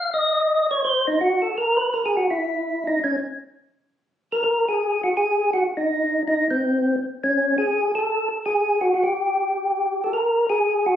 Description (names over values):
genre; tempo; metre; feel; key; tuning
jazz; 165 BPM; 4/4; swing 64% on 8ths; unclear; A4 = 439 Hz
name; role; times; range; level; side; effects
percussive tonewheel organ; solo; 0.0-11.0 s; C4 to E#5; -19 LUFS; equal; slow rotary speaker
room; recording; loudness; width
wet studio reverb, RT60 0.9 s; recorded on a phone in the room, studio reverb; -19 LUFS; side -10 dB against mid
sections
0.0-4.4 A section; 4.4-11.0 B section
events
tonewheel organ solo 0.0-4.4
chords
none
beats
| 0.09 0.46 0.82 1.18 | 1.54 1.90 2.27 2.63 | 2.99 3.35 3.71 4.08 | 4.44 4.80 5.17 5.53 | 5.89 6.25 6.62 6.98 | 7.34 7.71 8.07 8.44 | 8.80 9.16 9.53 9.89 | 10.25 10.62